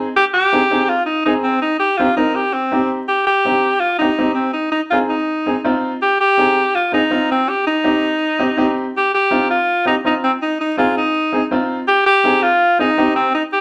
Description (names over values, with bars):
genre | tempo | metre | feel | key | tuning
latin | 164 BPM | 4/4 | straight | unclear | A4 = 440 Hz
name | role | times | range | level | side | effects
bright upright piano | accompaniment | 0.0-13.2 s | C4 to Bb4 | -21 LUFS | equal | none
edgy alto saxophone | melody | 0.2-13.6 s | C4 to G4 | -17 LUFS | equal | none
room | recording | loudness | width
wet studio reverb, RT60 0.5 s | vinyl crackle | -16 LUFS | mono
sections
0.0-3.1 A section; 3.1-13.6 B section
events
none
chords
0.0 Ab; 1.6 Cm; 4.6 Ab; 7.5 Cm; 10.4 Ab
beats
| 0.16 0.53 0.89 1.26 | 1.62 1.99 2.36 2.72 | 3.09 3.45 3.82 4.19 | 4.55 4.92 5.29 5.65 | 6.02 6.38 6.75 7.12 | 7.48 7.85 8.21 8.58 | 8.95 9.31 9.68 10.04 | 10.41 10.78 11.14 11.51 | 11.88 12.24 12.61 12.97 | 13.34